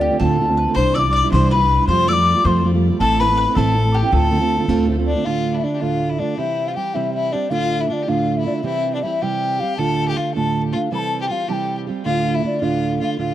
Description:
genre	celtic folk, Celtic jig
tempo	106 BPM (dotted quarters)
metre	6/8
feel	straight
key	D dorian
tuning	A4 = 440 Hz
part	mellow hollow wooden flute	melody	0.0-13.3 s	D5 to E6	-21 LUFS	left 3 dB	none
part	mandolin	second line	0.0-4.8 s	G4 to D5	-26 LUFS	right 2 dB	none
part	fingerpicked plugged-in steel-string acoustic guitar	accompaniment	0.0-13.3 s	D2 to G4	-21 LUFS	right 4 dB	none
part	upright bass	bass	0.0-5.1 s	A1 to F2	-19 LUFS	left 1 dB	none
part	bright fiddle	second line	0.7-13.3 s	D4 to D5	-27 LUFS	left 6 dB	tape echo
room	studio reverb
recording	dry, close 1970s-style studio recording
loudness	-16 LUFS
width	side -12 dB against mid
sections	0.0-5.3 A section; 5.3-13.3 B section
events	none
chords	0.0 Dm7; 0.8 Cadd9; 1.9 Fadd9; 3.0 Am; 4.1 Dm7; 5.3 Dm; 6.4 C; 7.5 Dm; 8.6 C; 9.8 Dm; 10.9 C; 12.1 Dm

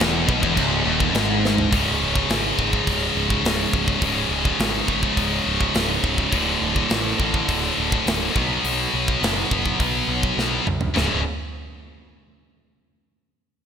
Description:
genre	heavy metal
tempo	104 BPM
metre	4/4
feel	straight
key	C# phrygian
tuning	A4 = 440 Hz
part	heavy high-gain guitar	riff	0.0-11.2 s	C#2 to B3	-23 LUFS	left 9 dB	distortion
part	high-gain distorted guitar	riff	0.0-11.2 s	C#2 to B3	-25 LUFS	right 11 dB	distortion
part	sludgy distorted guitar	riff	0.0-1.7 s	C#2 to B2	-26 LUFS	left 1 dB	overdrive
part	fuzz picked electric bass	bass	0.0-11.2 s	C#1 to B#1	-27 LUFS	equal	overdrive
part	tight metal drum kit	drums	0.0-11.1 s	china cymbal, hi-hat, kick drum, snare drum, toms	-25 LUFS	equal	gated reverb
room	moderate plate reverb, RT60 2.4 s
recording	bright 1980s-style digital production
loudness	-18 LUFS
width	side -7 dB against mid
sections	0.0-1.7 A section; 1.7-10.9 B section; 10.9-13.3 C section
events	drum fill 1.4, 10.4-10.9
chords	0.0 C#m; 1.7 C#5; 6.3 D5; 8.3 B5; 10.9 C#5

